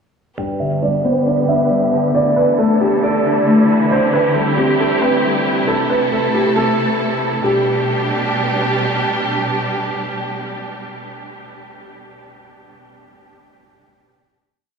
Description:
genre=hip hop, trap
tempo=136 BPM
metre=4/4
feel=half-time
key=G major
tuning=A4 = 440 Hz
part: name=dark concert grand piano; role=melody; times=0.4-8.7 s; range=G4 to G5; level=-19 LUFS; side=right 1 dB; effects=low-pass filter, diffuse ambient delay
part: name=Celtic harp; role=accompaniment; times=0.4-8.0 s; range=G2 to D5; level=-18 LUFS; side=left 2 dB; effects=low-pass filter
part: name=dark symphonic string section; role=sustained chords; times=0.4-10.8 s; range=B2 to B4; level=-19 LUFS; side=right 2 dB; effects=low-pass filter
room=wet huge ambient reverb, RT60 8.1 s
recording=dreamy mix soaked in reverb, studio reverb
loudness=-14 LUFS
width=side -6 dB against mid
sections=0.4-7.4 breakdown; 7.4-11.0 final chord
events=filter sweep 0.4-7.4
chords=0.4 G; 2.1 Dsus2; 3.9 Cadd9; 5.7 Am; 7.4 G

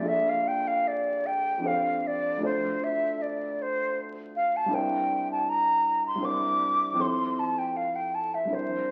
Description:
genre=classical, impressionist duo for flute and grand piano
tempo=79 BPM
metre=3/4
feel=rubato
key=unclear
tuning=A4 = 438 Hz
part: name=mellow concert flute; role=melody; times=0.0-8.9 s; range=C5 to D6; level=-28 LUFS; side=equal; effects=none
part: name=dark grand piano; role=accompaniment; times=0.0-8.9 s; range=Bb1 to D5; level=-35 LUFS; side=equal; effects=none
room=wet large studio reverb, RT60 1.3 s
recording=very old 78 rpm record, vinyl crackle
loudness=-27 LUFS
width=mono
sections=0.0-8.9 A section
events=none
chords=0.1 Bbmaj7; 1.7 F69; 2.5 Dm7; 4.7 C9; 7.0 Fmaj7

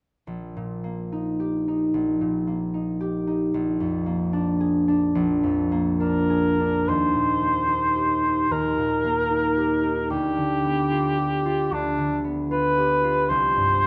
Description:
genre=classical, romantic duo for cor anglais and harp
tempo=74 BPM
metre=4/4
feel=rubato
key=Eb major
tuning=A4 = 440 Hz
part: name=concert harp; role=accompaniment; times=0.3-13.9 s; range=Bb1 to Ab4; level=-25 LUFS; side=equal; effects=none
part: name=mellow cor anglais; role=melody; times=6.0-13.9 s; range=D4 to C5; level=-25 LUFS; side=equal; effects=none
room=wet recital hall reverb, RT60 1.5 s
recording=close, detailed microphones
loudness=-23 LUFS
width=mono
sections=0.3-6.9 A section; 6.9-13.9 B section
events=none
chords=0.3 Eb/Bb; 3.5 Bb7; 6.9 Eb; 10.1 G7/D; 13.3 C5

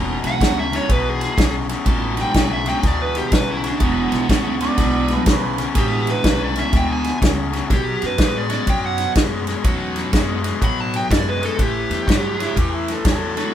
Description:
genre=electric blues shuffle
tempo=123 BPM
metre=4/4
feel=swing 64% on 8ths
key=E mixolydian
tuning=A4 = 443 Hz
part: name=tonewheel organ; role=accompaniment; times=0.0-10.4, 13.4-13.5 s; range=E3 to F#4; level=-26 LUFS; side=right 3 dB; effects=slow rotary speaker, chorus vibrato
part: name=biting overdriven guitar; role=riff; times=0.0-13.5 s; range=E2 to G#3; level=-24 LUFS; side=left 4 dB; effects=none
part: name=upright bass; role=bass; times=0.0-13.4 s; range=E1 to A2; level=-26 LUFS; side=equal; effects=none
part: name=natural country drum kit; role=drums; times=0.2-13.4 s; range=kick drum, ride cymbal, snare drum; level=-20 LUFS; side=equal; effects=none
part: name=dark smooth lead guitar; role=melody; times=0.3-12.6 s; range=B3 to B5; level=-23 LUFS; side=right 3 dB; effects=overdrive
part: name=mellow harmonica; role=second line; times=4.6-5.7, 12.4-13.5 s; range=E4 to D5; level=-26 LUFS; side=right 3 dB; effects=overdrive
room=moderate studio reverb, RT60 0.8 s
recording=band playing live in one room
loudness=-17 LUFS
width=side -10 dB against mid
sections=0.0-13.5 A section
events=none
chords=0.0 E9; 7.7 B9; 11.6 A5

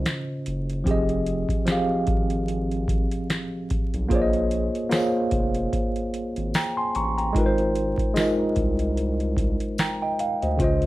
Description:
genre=lo-fi hip hop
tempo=74 BPM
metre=4/4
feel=swing 55% on 16ths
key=Ab major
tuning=A4 = 444 Hz
part: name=tine electric piano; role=accompaniment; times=0.0-10.9 s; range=Db3 to Db6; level=-24 LUFS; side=equal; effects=medium stereo tremolo, cassette tape, plate reverb
part: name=saturated sub bass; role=bass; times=0.0-10.9 s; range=F1 to D2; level=-28 LUFS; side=equal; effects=none
part: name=booming analog drum machine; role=drums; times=0.1-10.9 s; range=hi-hat, kick drum, snare drum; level=-26 LUFS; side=equal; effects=none
part: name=tambourine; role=percussion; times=4.9-10.0 s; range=none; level=-44 LUFS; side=left 8 dB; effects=none
room=moderate studio reverb, RT60 0.6 s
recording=vinyl crackle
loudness=-22 LUFS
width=side -17 dB against mid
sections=0.0-10.9 A section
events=none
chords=0.0 Dbmaj9; 0.9 Fm9; 4.1 Bbm11; 7.3 Ab69

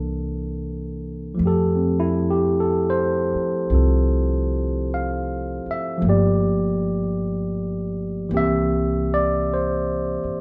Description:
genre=jazz ballad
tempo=52 BPM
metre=4/4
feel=swing 69% on 8ths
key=F major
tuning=A4 = 442 Hz
part: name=barky tine electric piano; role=accompaniment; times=0.0-10.4 s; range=E3 to F5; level=-23 LUFS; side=equal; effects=none
part: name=upright bass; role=bass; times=0.0-10.3 s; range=G1 to F2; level=-28 LUFS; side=equal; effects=none
room=wet large studio reverb, RT60 1.1 s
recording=band playing live in one room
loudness=-22 LUFS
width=mono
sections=0.0-10.4 A section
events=none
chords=0.0 C13; 1.4 Fadd9; 6.0 Gm9; 8.3 C7

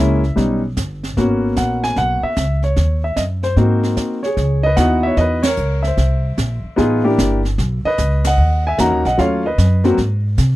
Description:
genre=jazz piano trio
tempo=150 BPM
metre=4/4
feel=swing 66% on 8ths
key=G# minor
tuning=A4 = 440 Hz
part: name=warm baby grand piano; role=melody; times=0.0-10.2 s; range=F#3 to A#5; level=-17 LUFS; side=equal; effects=none
part: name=upright bass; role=bass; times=0.0-10.6 s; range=G1 to B#2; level=-17 LUFS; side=equal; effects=none
part: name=jazz brush drum kit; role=drums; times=0.2-10.6 s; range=brushed snare drum, hi-hat, kick drum, ride cymbal, snare drum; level=-23 LUFS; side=right 1 dB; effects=none
room=little or no reverb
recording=dry, close 1970s-style studio recording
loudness=-14 LUFS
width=side -16 dB against mid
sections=0.0-4.4 A section; 4.4-10.6 B section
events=break 4.0-4.4; band accent 5.4, 8.2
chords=0.4 D#aug7; 1.2 G#m11; 2.8 D#m7; 3.6 G#7; 4.4 C#m11; 6.0 C9; 7.6 Bmaj9; 9.2 D#m7b5; 10.0 G#

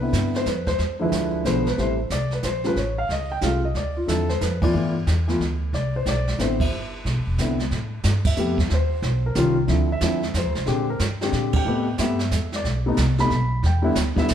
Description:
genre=jazz piano trio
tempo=182 BPM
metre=3/4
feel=swing 64% on 8ths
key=C major, A minor from 7.7 s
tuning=A4 = 439 Hz
part: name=warm concert grand piano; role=melody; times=0.0-14.3 s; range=C3 to B5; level=-23 LUFS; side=left 1 dB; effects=none
part: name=upright bass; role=bass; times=0.0-14.3 s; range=E1 to Bb2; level=-24 LUFS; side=equal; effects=none
part: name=jazz brush drum kit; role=drums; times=0.1-14.3 s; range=brushed snare drum, crash cymbal, hi-hat, kick drum, ride cymbal, snare drum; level=-27 LUFS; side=right 2 dB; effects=none
room=moderate large studio reverb, RT60 1.2 s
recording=heard from further back in the room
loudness=-20 LUFS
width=side -9 dB against mid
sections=0.0-7.7 A section; 7.7-14.3 B section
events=band accent 4.6, 6.6, 8.2, 11.5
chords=0.0 Cmaj9; 0.8 E7b9; 1.8 Am7; 2.8 A7alt; 3.8 Dm9; 4.7 G13; 5.7 Cmaj9; 7.7 A7(no3); 8.7 N.C.; 9.7 Dm9; 10.7 Bb13; 11.7 Am9; 12.6 B7(no3); 13.6 Em7

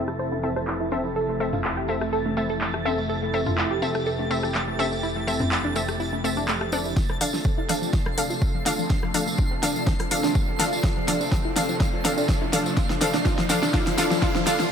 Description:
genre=progressive house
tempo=124 BPM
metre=4/4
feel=straight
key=F major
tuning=A4 = 440 Hz
part: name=lush unison pad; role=sustained chords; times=0.0-14.7 s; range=C3 to A4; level=-30 LUFS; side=right 1 dB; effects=chorus, phaser, sidechain pumping
part: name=analog pluck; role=arpeggios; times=0.0-14.7 s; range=F3 to C5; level=-29 LUFS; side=equal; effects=chorus, phaser, sidechain pumping, dub echo
part: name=wide unison pluck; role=stabs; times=0.0-14.7 s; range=C4 to F5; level=-28 LUFS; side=left 2 dB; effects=sidechain pumping, dub echo
part: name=fat analog bass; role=bass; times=0.0-6.9 s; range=F1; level=-33 LUFS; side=equal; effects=sidechain pumping
part: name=twinkling granular texture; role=texture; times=0.0-14.7 s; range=A6 to C7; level=-36 LUFS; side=right 1 dB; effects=built-in reverb, sidechain pumping
part: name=punchy analog drum machine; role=percussion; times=0.1-6.8 s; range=congas, rim click, toms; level=-32 LUFS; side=left 1 dB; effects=sidechain pumping on toms, sidechain pumping on perc, sidechain pumping on snare
part: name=tambourine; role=percussion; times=0.1-14.7 s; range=none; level=-35 LUFS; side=right 4 dB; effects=none
part: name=deep house drum kit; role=drums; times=0.7-14.7 s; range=handclaps, hi-hat, rim click, snare drum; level=-30 LUFS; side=equal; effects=overdrive, sidechain pumping on hats
part: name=electronic kick drum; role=drums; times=7.0-14.3 s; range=none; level=-24 LUFS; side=equal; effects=overdrive
part: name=riser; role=sound effects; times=10.4-14.7 s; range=none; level=-34 LUFS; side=right 3 dB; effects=none
room=light reverb, digital ambience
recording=low-pass filter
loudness=-21 LUFS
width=side -7 dB against mid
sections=0.0-7.0 A section; 7.0-14.7 B section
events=filter sweep on analog synth pad 0.0-7.0; filter sweep 0.0-7.0; build-up 7.0-14.7; drum fill 7.0-14.7; filter sweep on synth arpeggio sound 7.0-14.7; filter sweep on synth pluck 7.0-14.7; riser 10.4-14.7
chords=0.0 Am/F; 7.0 F6

